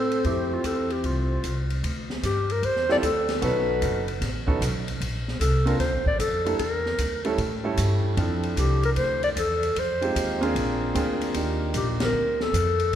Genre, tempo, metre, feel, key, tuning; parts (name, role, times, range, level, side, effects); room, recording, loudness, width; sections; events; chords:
jazz, small-group swing and bop; 151 BPM; 4/4; swing 66% on 8ths; A4 = 441 Hz
breathy clarinet; melody; 0.0-13.0 s; F4 to D5; -26 LUFS; left 2 dB
breathy alto saxophone; second line; 0.0-1.7 s; C4; -29 LUFS; equal
upright bass; bass; 0.0-13.0 s; F#1 to A2; -27 LUFS; equal
open jazz drum kit; drums; 0.1-13.0 s; hi-hat, kick drum, ride cymbal, snare drum; -32 LUFS; equal
clear grand piano; accompaniment; 0.3-12.5 s; F3 to A4; -28 LUFS; right 2 dB
moderate concert hall reverb, RT60 1.9 s; recorded in a church or concert hall; -22 LUFS; side -10 dB against mid
0.0-1.8 A section; 1.8-13.0 B section
band accent 11.9
0.0 Fmaj9; 1.8 Dsus4; 3.4 B9; 5.0 Bbmaj7; 6.6 Em7b5; 7.4 A7; 8.2 Dm7; 9.8 Fm7; 10.6 Bb7; 11.3 Ebmaj7